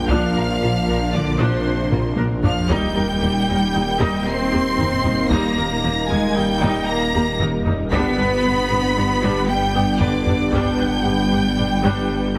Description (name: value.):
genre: cinematic, hybrid orchestral and electronic film score.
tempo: 115 BPM.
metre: 5/4.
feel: straight.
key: unclear.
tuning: A4 = 444 Hz.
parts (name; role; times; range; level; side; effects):
rich studio violin section; melody; 0.0-12.4 s; C6 to C7; -30 LUFS; equal; none.
rich symphonic violin section; second line; 0.0-12.4 s; C5 to C6; -29 LUFS; equal; none.
airy breathy pad; sustained chords; 0.0-12.4 s; G3 to B4; -31 LUFS; equal; chorus.
mellow French horn section; sustained chords; 0.0-12.4 s; Bb3 to Eb4; -29 LUFS; equal; none.
swelling detuned saw bass; bass; 0.0-12.4 s; Eb1 to Bb1; -29 LUFS; equal; none.
warm symphonic cello section; bass; 0.0-12.4 s; C3 to C4; -26 LUFS; equal; none.
rich symphonic viola section; accompaniment; 0.1-12.4 s; F3 to B4; -29 LUFS; equal; none.
rich symphonic double bass section; bass; 0.1-12.4 s; Bb1 to G2; -28 LUFS; equal; none.
taiko ensemble; drums; 0.1-12.4 s; none; -27 LUFS; equal; none.
room: moderate scoring stage reverb, RT60 1.7 s.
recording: heavily compressed radio sound.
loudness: -19 LUFS.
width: mono.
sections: 0.0-12.4 A section.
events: drum fill 1.9-2.7.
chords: 0.0 Bb; 2.7 Eb; 7.9 G.